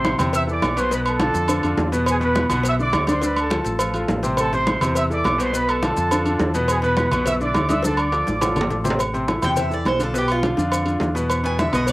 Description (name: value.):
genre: latin, salsa.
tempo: 208 BPM.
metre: 4/4.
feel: straight.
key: A minor.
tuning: A4 = 440 Hz.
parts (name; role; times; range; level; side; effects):
mellow trumpet section; melody; 0.0-8.9 s; G#4 to E6; -23 LUFS; right 1 dB; cassette tape.
clear concert grand piano; accompaniment; 0.0-11.9 s; B2 to D5; -23 LUFS; left 1 dB; cassette tape.
fingered electric bass; bass; 0.0-11.9 s; G#1 to F2; -26 LUFS; equal; none.
congas; percussion; 0.0-11.9 s; none; -27 LUFS; equal; none.
cowbell and bongos; percussion; 0.0-11.9 s; none; -31 LUFS; left 4 dB; none.
maracas; percussion; 0.1-11.9 s; none; -36 LUFS; left 2 dB; none.
timbales and agogo bells; percussion; 0.1-11.9 s; none; -26 LUFS; right 2 dB; none.
Cuban tres; melody; 9.4-11.9 s; F4 to G#5; -24 LUFS; right 1 dB; cassette tape.
room: moderate studio ambience, RT60 0.5 s.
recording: home recording on cassette.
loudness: -18 LUFS.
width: side -19 dB against mid.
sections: 0.0-9.0 A section; 9.0-11.9 B section.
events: drum fill 7.8-9.0; Cuban tres solo 9.0-11.9.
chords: 0.0 Amadd9; 0.9 Bm7b5; 2.1 E7(no3); 3.2 Dm7; 4.4 Amadd9; 5.5 Bm7b5; 6.7 E7(no3); 7.8 Dm7; 9.0 Amadd9; 10.1 Bdim; 11.3 E5.